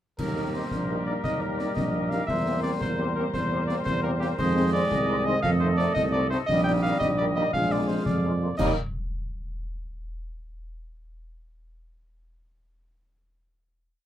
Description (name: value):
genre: military-style march for wind band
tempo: 114 BPM (dotted quarters)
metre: 6/8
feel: straight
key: Eb major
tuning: A4 = 440 Hz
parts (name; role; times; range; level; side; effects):
- mellow cornet; melody; 0.2-8.7 s; G4 to G5; -29 LUFS; equal; none
- warm woodwind section; second line; 0.2-8.7 s; G4 to G5; -34 LUFS; equal; none
- warm trombone section; sustained chords; 0.2-8.7 s; Eb3 to Bb3; -31 LUFS; equal; none
- warm tuba; bass; 0.2-8.7 s; Bb1 to F2; -27 LUFS; right 1 dB; none
- concert snare drum, clash cymbals and concert bass drum; drums; 0.2-8.8 s; none; -34 LUFS; left 1 dB; none
- warm French horn section; accompaniment; 0.4-8.7 s; G3 to G4; -32 LUFS; left 1 dB; none
room: wet booth ambience, RT60 0.2 s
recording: heard from further back in the room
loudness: -23 LUFS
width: side -11 dB against mid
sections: 0.2-8.6 A section; 8.6-9.6 final chord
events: none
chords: 0.2 Eb; 2.3 C7/E; 4.4 Fm7; 5.4 F7; 6.5 Eb/Bb; 7.5 Bb7; 8.6 Eb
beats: | 0.19 0.71 | 1.24 1.76 | 2.29 2.81 | 3.34 3.86 | 4.39 4.91 | 5.43 5.96 | 6.48 7.01 | 7.53 8.06 | 8.58